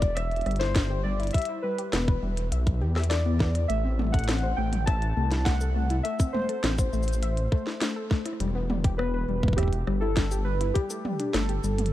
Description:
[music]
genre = IDM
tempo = 102 BPM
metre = 4/4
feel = straight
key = A dorian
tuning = A4 = 440 Hz
[part]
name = warbly lo-fi synth keys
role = melody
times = 0.0-11.9 s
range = G4 to A5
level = -32 LUFS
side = equal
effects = chorus, ping-pong delay
[part]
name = dark detuned saw bass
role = bass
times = 0.0-11.9 s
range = E1 to E2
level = -27 LUFS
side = equal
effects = none
[part]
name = electronic kick drum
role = drums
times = 0.0-10.9 s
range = none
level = -24 LUFS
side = equal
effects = studio reverb
[part]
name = glitchy drum kit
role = drums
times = 0.0-11.9 s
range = hi-hat, rim click, shaker, snare drum, toms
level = -32 LUFS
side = right 1 dB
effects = studio reverb
[part]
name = warbly dusty pluck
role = arpeggios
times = 0.2-11.7 s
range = G3 to E5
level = -33 LUFS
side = left 4 dB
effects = chorus, digital delay
[sound]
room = little or no reverb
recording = dark, warm production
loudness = -24 LUFS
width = side -14 dB against mid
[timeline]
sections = 0.0-11.9 A section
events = none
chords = 0.0 Em; 3.7 Am; 8.4 Em; 10.8 Gsus2

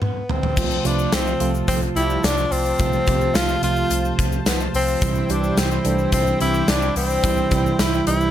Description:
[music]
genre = 1980s-style pop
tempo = 108 BPM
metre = 4/4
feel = straight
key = unclear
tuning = A4 = 440 Hz
[part]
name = clear tenor saxophone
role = melody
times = 0.0-8.3 s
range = B3 to F4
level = -23 LUFS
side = left 2 dB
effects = none
[part]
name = gated 80s drum kit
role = drums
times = 0.0-8.2 s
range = crash cymbal, hi-hat, kick drum, snare drum, tambourine, toms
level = -23 LUFS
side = equal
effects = none
[part]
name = tine electric piano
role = accompaniment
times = 0.6-8.3 s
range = C3 to G4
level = -23 LUFS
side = right 4 dB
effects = none
[part]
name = brassy analog pad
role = sustained chords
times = 0.6-8.3 s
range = E4 to A5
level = -31 LUFS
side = left 3 dB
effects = chorus
[part]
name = vintage muted picked electric bass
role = bass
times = 0.6-8.3 s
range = C2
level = -26 LUFS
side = equal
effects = none
[part]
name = tube shaker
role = percussion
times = 0.6-8.3 s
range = none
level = -40 LUFS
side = left 10 dB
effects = none
[part]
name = mellow synth brass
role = stabs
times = 0.8-6.6 s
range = E3 to D5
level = -30 LUFS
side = left 1 dB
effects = chorus, tape echo
[sound]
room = light reverb, studio reverb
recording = none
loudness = -17 LUFS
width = side -11 dB against mid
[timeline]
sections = 0.6-8.3 A section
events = drum fill 0.0-0.6; stop 0.0-0.6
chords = 0.0 N.C.; 0.6 F/C

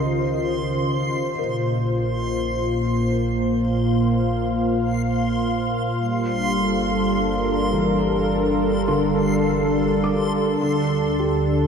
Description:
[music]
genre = ambient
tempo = 52 BPM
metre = 4/4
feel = straight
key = unclear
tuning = A4 = 440 Hz
[part]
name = warm analog pad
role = sustained chords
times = 0.0-11.7 s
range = Bb2 to F5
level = -20 LUFS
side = equal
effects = chorus
[part]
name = felt-muted upright piano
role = arpeggios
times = 0.0-11.7 s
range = Db3 to D6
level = -29 LUFS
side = equal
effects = ping-pong delay
[part]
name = round analog bass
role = bass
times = 0.0-11.7 s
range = G1 to D2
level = -32 LUFS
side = equal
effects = none
[part]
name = backwards swelling texture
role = texture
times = 0.0-11.7 s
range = C6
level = -30 LUFS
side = equal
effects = built-in reverb
[sound]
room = wet cathedral reverb, RT60 5.7 s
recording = dark, warm production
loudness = -19 LUFS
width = side -6 dB against mid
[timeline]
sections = 0.0-11.7 A section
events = fade-in on analog synth bass 0.0-11.7; fade-out on felt piano 0.0-11.7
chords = 0.0 Dbmaj7; 1.4 Bbsus2; 6.0 Gm7; 10.6 D7(no3)

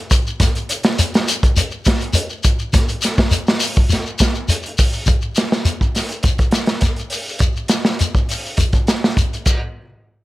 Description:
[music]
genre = afrobeat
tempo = 103 BPM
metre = 4/4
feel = straight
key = none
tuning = none
[part]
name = crunchy breakbeat drum kit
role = drums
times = 0.1-9.6 s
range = crash cymbal, hi-hat, kick drum, snare drum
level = -16 LUFS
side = equal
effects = none
[part]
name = shekere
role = percussion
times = 0.1-9.6 s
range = none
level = -20 LUFS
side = left 2 dB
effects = none
[sound]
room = little or no reverb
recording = none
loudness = -15 LUFS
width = side -18 dB against mid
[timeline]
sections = 0.0-5.1 A section; 5.1-9.8 B section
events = none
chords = none

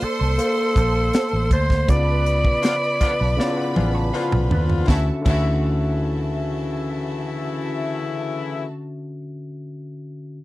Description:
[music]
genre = lush 1970s-style soul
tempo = 80 BPM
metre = 4/4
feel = straight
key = D major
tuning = A4 = 441 Hz
[part]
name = growling alto saxophone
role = melody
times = 0.0-4.1 s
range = A4 to D5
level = -23 LUFS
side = equal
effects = none
[part]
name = rich studio violin section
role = second line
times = 0.0-8.6 s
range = F#4 to C6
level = -31 LUFS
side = right 2 dB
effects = slapback echo
[part]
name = overdriven tine electric piano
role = accompaniment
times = 0.0-10.4 s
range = C#3 to B5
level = -26 LUFS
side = left 1 dB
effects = none
[part]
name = clean electric guitar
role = riff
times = 0.0-9.2 s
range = D4 to C#5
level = -34 LUFS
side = right 6 dB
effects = wah
[part]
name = vintage muted fingered electric bass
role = bass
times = 0.0-9.1 s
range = A1 to Eb2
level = -22 LUFS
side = equal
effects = none
[part]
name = tight funk drum kit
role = drums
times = 0.0-5.5 s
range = crash cymbal, hi-hat, kick drum, snare drum, toms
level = -21 LUFS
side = equal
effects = none
[part]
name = clear horn section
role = stabs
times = 2.6-8.6 s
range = C#3 to E#4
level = -28 LUFS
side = left 5 dB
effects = none
[sound]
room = little or no reverb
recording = dry, close 1970s-style studio recording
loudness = -18 LUFS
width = side -17 dB against mid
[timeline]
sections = 0.0-4.9 A section; 4.9-7.9 B section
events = band accent 1.9-4.9; tine electric piano fill 2.6-4.9; drum fill 3.4-4.9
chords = 0.0 Bbmaj9; 1.9 C#7b9; 4.9 Dmaj9

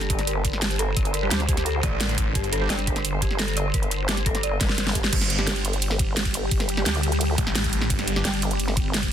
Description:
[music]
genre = dark technical drum and bass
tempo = 173 BPM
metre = 4/4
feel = straight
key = unclear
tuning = A4 = 440 Hz
[part]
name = swarming drone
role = sustained chords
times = 0.0-9.1 s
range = D3 to C5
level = -31 LUFS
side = equal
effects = built-in reverb, sidechain pumping
[part]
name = filtered dub chord stab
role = stabs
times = 0.0-9.1 s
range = G3 to G4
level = -35 LUFS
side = right 3 dB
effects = lush chorus, dub echo
[part]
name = vowel-sweep wobble bass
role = bass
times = 0.0-9.1 s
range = G1 to D2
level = -26 LUFS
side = equal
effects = chorus
[part]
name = dubstep drum kit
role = drums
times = 0.0-9.1 s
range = crash cymbal, hi-hat, ride cymbal, snare drum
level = -26 LUFS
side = right 1 dB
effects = none
[part]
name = dark detuned synth bell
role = arpeggios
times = 0.1-5.1 s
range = G4 to D5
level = -31 LUFS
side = left 1 dB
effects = chorus, phaser, sidechain pumping, dub echo
[part]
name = electronic kick drum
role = drums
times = 0.1-9.1 s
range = none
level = -26 LUFS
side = equal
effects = none
[part]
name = snarling distorted saw bass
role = bass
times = 1.8-2.7, 5.1-8.2 s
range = G1 to A1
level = -26 LUFS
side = equal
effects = distortion, tube saturation
[sound]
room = digital ambience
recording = dense, heavily limited modern master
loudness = -21 LUFS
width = side -9 dB against mid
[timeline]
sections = 0.0-5.1 A section; 5.1-9.1 A section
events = drop 0.0-5.1, 5.1-9.1; drum fill 4.6-5.1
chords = 0.0 G5

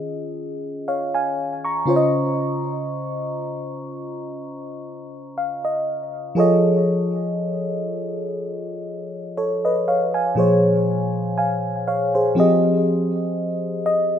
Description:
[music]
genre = R&B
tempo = 60 BPM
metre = 4/4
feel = swing 54% on 16ths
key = F minor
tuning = A4 = 440 Hz
[part]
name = mellow FM electric piano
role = solo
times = 0.0-14.2 s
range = Bb2 to Db6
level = -20 LUFS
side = equal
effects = chorus, ping-pong delay
[sound]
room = moderate studio reverb, RT60 0.6 s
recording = rough home demo mix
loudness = -19 LUFS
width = side -9 dB against mid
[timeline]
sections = 0.0-14.2 A section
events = FM electric piano fill 4.9-6.4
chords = 0.0 Eb9sus4; 1.9 Dbmaj9; 6.4 F7alt; 10.4 Bbm9; 12.4 Fm9

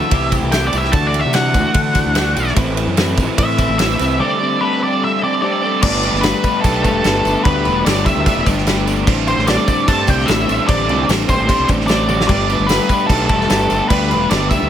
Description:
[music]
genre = indie rock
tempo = 148 BPM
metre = 4/4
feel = straight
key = G major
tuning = A4 = 440 Hz
[part]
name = octave-fuzz lead guitar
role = melody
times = 0.0-14.7 s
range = A4 to A5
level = -19 LUFS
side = equal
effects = distortion
[part]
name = raw garage guitar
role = riff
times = 0.0-14.7 s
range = E3 to G4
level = -22 LUFS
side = right 6 dB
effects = overdrive, wide subtle chorus
[part]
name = twelve-string electric guitar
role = riff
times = 0.0-14.7 s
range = A2 to C5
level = -21 LUFS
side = left 6 dB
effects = analog chorus
[part]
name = fuzz fingered electric bass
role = bass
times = 0.1-14.7 s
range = E1 to D3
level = -20 LUFS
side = equal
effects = overdrive
[part]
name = loose indie drum kit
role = drums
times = 0.1-14.6 s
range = crash cymbal, kick drum, ride cymbal, snare drum, toms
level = -18 LUFS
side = equal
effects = none
[part]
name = tambourine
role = percussion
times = 0.3-14.6 s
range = none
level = -35 LUFS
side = left 9 dB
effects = none
[part]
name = barky tine electric piano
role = second line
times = 5.4-14.7 s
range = A3 to A4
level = -28 LUFS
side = left 5 dB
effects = overdrive
[sound]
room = light reverb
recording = none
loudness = -13 LUFS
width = side -10 dB against mid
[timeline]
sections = 0.0-5.8 A section; 5.8-14.7 B section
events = lead electric guitar solo 0.0-5.8; drum fill 12.1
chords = 0.1 C6; 0.9 Dadd9; 2.6 Amadd9; 4.2 D7sus4; 5.8 Gadd9; 9.1 D7sus4/A; 12.3 Gadd9

